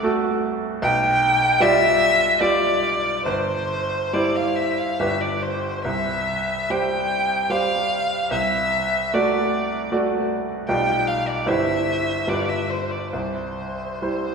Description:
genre	classical, romantic duo for violin and grand piano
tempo	67-79 BPM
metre	3/4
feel	rubato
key	C major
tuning	A4 = 440 Hz
part	rich violin	melody	0.0-14.3 s	C5 to G5	-22 LUFS	equal	none
part	bright grand piano	accompaniment	0.0-14.3 s	G1 to D5	-22 LUFS	right 1 dB	none
room	wet concert hall reverb, RT60 2.4 s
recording	recorded in a church or concert hall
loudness	-19 LUFS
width	side -5 dB against mid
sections	0.0-14.3 A section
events	none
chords	0.0 D7/C (rootless); 0.8 G7/B; 3.3 C/G; 5.0 G; 5.8 C; 8.3 D7/C; 10.7 G7/B; 11.5 C/G; 12.3 G7; 13.1 C

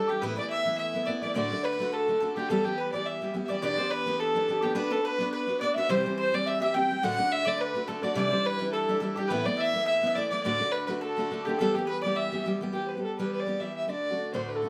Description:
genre	celtic folk, Celtic reel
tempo	211 BPM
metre	4/4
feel	swing 54% on 8ths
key	E minor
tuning	A4 = 439 Hz
part	warm fiddle	melody	0.0-14.7 s	G4 to G5	-32 LUFS	equal	none
part	baroque flute	second line	0.0-14.7 s	G4 to G5	-37 LUFS	equal	none
part	mandolin	second line	0.0-12.4 s	G4 to G5	-38 LUFS	equal	none
part	picked steel-string acoustic guitar	accompaniment	0.0-14.7 s	D2 to B4	-34 LUFS	equal	none
room	moderate studio reverb, RT60 0.5 s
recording	none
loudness	-28 LUFS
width	mono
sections	0.0-3.6 A section; 3.6-12.7 A section; 12.7-14.7 B section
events	none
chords	0.2 Asus2; 1.4 D; 2.5 Em; 3.6 Em7; 4.8 Bm; 5.9 C; 7.0 D; 8.2 Cadd9; 9.3 Asus2; 10.4 D; 11.6 Em; 13.9 D

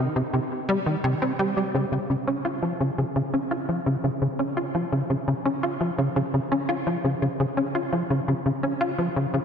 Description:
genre	ambient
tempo	85 BPM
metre	4/4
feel	straight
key	Db lydian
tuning	A4 = 444 Hz
part	tight sequencer bass	solo	0.0-9.4 s	C3 to F4	-23 LUFS	equal	ensemble chorus, ping-pong delay
room	wet lush hall reverb, RT60 2.6 s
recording	dreamy mix soaked in reverb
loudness	-23 LUFS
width	side -7 dB against mid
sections	0.0-9.4 A section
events	none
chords	none

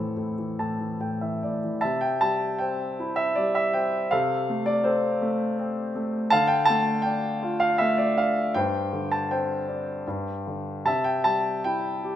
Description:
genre	classical, lyrical solo piano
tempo	80 BPM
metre	3/4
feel	uneven beats, rubato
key	C major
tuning	A4 = 439 Hz
part	warm grand piano	solo	0.0-12.2 s	G2 to A5	-23 LUFS	equal	none
room	moderate recital hall reverb, RT60 1.4 s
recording	minimal, uncompressed stereo recording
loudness	-23 LUFS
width	side -11 dB against mid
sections	0.0-1.8 A section; 1.8-12.2 B section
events	grand piano fill 0.2-1.8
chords	0.0 Am; 1.8 C; 4.1 F6/C; 6.3 Dm; 8.5 Gsus4; 10.8 C

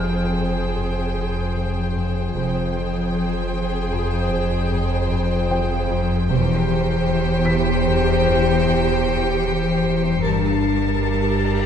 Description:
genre	cinematic, suspense film score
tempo	76 BPM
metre	5/4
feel	straight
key	F hungarian minor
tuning	A4 = 442 Hz
part	rich chamber violin section	melody	0.0-11.7 s	G5 to A5	-29 LUFS	left 2 dB	none
part	rich chamber violin section	second line	0.0-11.7 s	Bb4 to C5	-26 LUFS	equal	none
part	rich chamber viola section	accompaniment	0.0-11.7 s	G4 to Ab4	-28 LUFS	right 3 dB	none
part	concert harp	riff	0.0-11.7 s	E2 to G3	-24 LUFS	left 6 dB	none
part	rich symphonic cello section	bass	0.0-11.7 s	E2 to G2	-24 LUFS	right 4 dB	none
part	sub bass with octave	drone	0.0-11.7 s	E1 to G1	-27 LUFS	right 1 dB	none
part	impact and cymbal swell	sound effects	0.0-2.4, 11.0-11.7 s	none	-42 LUFS	left 1 dB	none
part	warm concert grand piano	texture	0.0-10.3 s	C5 to B6	-32 LUFS	equal	none
part	rich chamber double bass section	bass	2.4-11.0 s	E1 to G1	-26 LUFS	right 5 dB	none
part	rich symphonic violin section	texture	6.3-11.7 s	C7 to Db7	-35 LUFS	equal	none
room	moderate scoring stage reverb, RT60 1.6 s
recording	dark, warm production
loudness	-18 LUFS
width	side -8 dB against mid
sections	0.0-11.7 A section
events	impact 0.0-2.4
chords	0.0 Fmadd9; 6.3 C/E; 10.2 Gmadd9

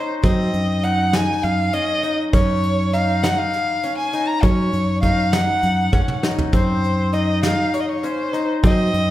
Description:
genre	progressive instrumental, band music in an uneven meter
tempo	200 BPM (eighths)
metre	7/8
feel	straight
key	unclear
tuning	A4 = 440 Hz
part	dark violin	melody	0.0-9.1 s	C5 to Bb5	-22 LUFS	equal	none
part	qanun	arpeggios	0.0-9.1 s	C4 to Eb4	-25 LUFS	left 2 dB	none
part	fingered electric bass	bass	0.2-9.1 s	Gb2 to Gb3	-21 LUFS	equal	none
part	soft brush drum kit	drums	0.2-9.1 s	hi-hat, kick drum, snare drum, toms	-20 LUFS	equal	none
room	wet recital hall reverb, RT60 1.6 s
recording	recorded in a church or concert hall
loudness	-17 LUFS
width	side -14 dB against mid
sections	0.0-9.1 A section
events	drum fill 5.9-6.5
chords	0.0 Ebm13/Gb; 2.3 Gb5; 6.5 Ebm13/Gb

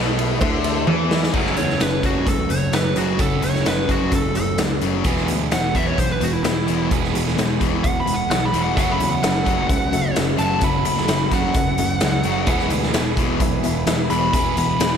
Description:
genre	classic rock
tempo	129 BPM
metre	4/4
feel	straight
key	F# minor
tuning	A4 = 440 Hz
part	tack piano	accompaniment	0.0-1.2, 8.8-15.0 s	A3 to E5	-30 LUFS	left 3 dB	slapback echo
part	tonewheel organ	sustained chords	0.0-1.3 s	A3 to A4	-33 LUFS	equal	none
part	cranked stack guitar	riff	0.0-15.0 s	E2 to F#3	-24 LUFS	left 8 dB	overdrive, slapback echo
part	overdriven semi-hollow guitar	riff	0.0-15.0 s	E2 to G#4	-25 LUFS	right 8 dB	none
part	picked electric bass	bass	0.0-15.0 s	E1 to E2	-26 LUFS	equal	none
part	raw garage drum kit	drums	0.2-14.9 s	crash cymbal, hi-hat, kick drum, ride cymbal, snare drum, toms	-22 LUFS	equal	none
part	cowbell	percussion	0.4-1.0 s	none	-35 LUFS	right 6 dB	none
part	fuzz lead guitar	melody	1.6-15.0 s	E4 to B5	-24 LUFS	right 1 dB	distortion
room	moderate lush hall reverb, RT60 1.8 s, small room ambience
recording	big arena sound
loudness	-17 LUFS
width	side -7 dB against mid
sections	0.0-1.3 A section; 1.3-15.0 B section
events	drum fill 0.9-1.3; lead electric guitar solo 1.3-15.0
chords	0.0 A5; 1.3 F#m; 5.1 E; 8.8 F#m7; 12.5 E

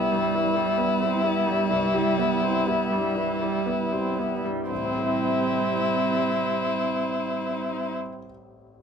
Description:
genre	neoclassical piano and strings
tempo	38-46 BPM (dotted quarters)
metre	6/8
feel	rubato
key	A minor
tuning	A4 = 437 Hz
part	rich violin	melody	0.0-8.0 s	E4	-26 LUFS	left 5 dB	none
part	dark cello	second line	0.0-7.9 s	G3	-30 LUFS	right 12 dB	none
part	clear grand piano	accompaniment	0.0-8.8 s	A1 to E5	-31 LUFS	left 4 dB	none
part	rich viola	accompaniment	0.0-8.0 s	E3 to C4	-29 LUFS	right 4 dB	none
part	dark analog pad	sustained chords	0.0-8.0 s	B3 to G4	-35 LUFS	right 2 dB	chorus
room	moderate large studio reverb, RT60 1.1 s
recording	minimal, uncompressed stereo recording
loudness	-22 LUFS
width	side -7 dB against mid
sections	0.0-4.7 A section; 4.7-7.8 B section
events	slowing down 0.0-4.7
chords	0.0 Cmaj7; 4.7 Am7

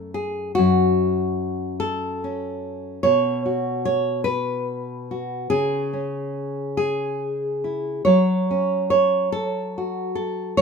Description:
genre	folk, solo fingerstyle acoustic guitar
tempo	48 BPM (dotted quarters)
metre	6/8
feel	rubato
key	unclear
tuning	A4 = 442 Hz
part	nylon-string guitar	solo	0.0-10.6 s	F#2 to C#5	-20 LUFS	equal	none
room	light reverb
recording	minimal, uncompressed stereo recording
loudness	-20 LUFS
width	side -5 dB against mid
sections	0.0-10.6 A section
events	none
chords	0.0 F#m; 3.0 Bsus2; 5.5 C#m; 8.1 F#m

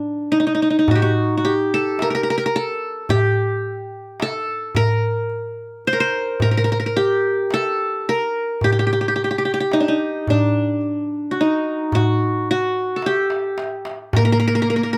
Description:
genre	Arabic maqam ensemble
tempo	109 BPM (eighths)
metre	10/8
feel	straight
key	G maqam nahawand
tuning	A4 = 440 Hz
part	qanun	melody	0.0-15.0 s	D4 to C5	-21 LUFS	equal	none
part	darbuka	percussion	0.3-14.8 s	none	-24 LUFS	equal	none
part	clear chamber cello section	second line	14.1-15.0 s	Bb3	-23 LUFS	equal	none
room	little or no reverb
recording	close, detailed microphones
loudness	-20 LUFS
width	mono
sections	0.0-14.1 A section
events	drum fill 13.0-14.1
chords	none

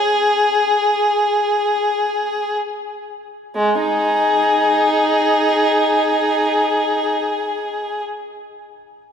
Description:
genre	classical, free, expressive piece for unaccompanied violin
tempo	free time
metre	none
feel	none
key	unclear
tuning	A4 = 440 Hz
part	rich violin	solo	0.0-8.0 s	G#3 to G#4	-16 LUFS	left 1 dB	none
room	wet church reverb, RT60 3.1 s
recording	recorded in a church or concert hall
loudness	-15 LUFS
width	side -7 dB against mid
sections	0.0-3.6 A section; 3.6-9.1 B section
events	slowing down 0.0-3.6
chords	none

